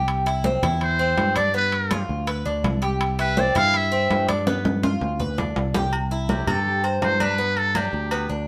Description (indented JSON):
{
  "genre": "latin, Cuban son and guajira",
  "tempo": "164 BPM",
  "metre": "4/4",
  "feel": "straight",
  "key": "C major",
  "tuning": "A4 = 440 Hz",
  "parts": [
    { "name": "Cuban tres", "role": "arpeggios", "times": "0.0-8.5 s", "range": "B3 to C5", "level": "-28 LUFS", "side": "equal", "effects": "none" },
    { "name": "picked electric bass", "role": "bass", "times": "0.0-8.5 s", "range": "C2 to G2", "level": "-28 LUFS", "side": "equal", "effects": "none" },
    { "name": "congas", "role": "percussion", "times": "0.1-8.5 s", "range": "none", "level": "-31 LUFS", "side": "equal", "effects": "none" },
    { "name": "timbales and agogo bells", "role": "percussion", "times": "0.1-8.3 s", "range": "none", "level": "-31 LUFS", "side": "equal", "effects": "none" },
    { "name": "trumpet with metal mute", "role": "melody", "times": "0.8-8.3 s", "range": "G4 to F5", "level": "-25 LUFS", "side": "equal", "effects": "none" }
  ],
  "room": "moderate studio reverb, RT60 0.8 s",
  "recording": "none",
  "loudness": "-22 LUFS",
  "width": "mono",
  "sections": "0.0-5.9 A section; 5.9-8.5 B section",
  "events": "muted trumpet solo 0.0-5.9; drum fill 4.5-5.9",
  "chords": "0.1 C; 1.5 G7; 3.0 C; 4.5 G7; 5.9 C6; 7.4 G",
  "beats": "| 0.08 0.44 0.81 1.18 | 1.54 1.91 2.27 2.64 | 3.00 3.37 3.74 4.10 | 4.47 4.83 5.20 5.56 | 5.93 6.29 6.66 7.02 | 7.38 7.75 8.11"
}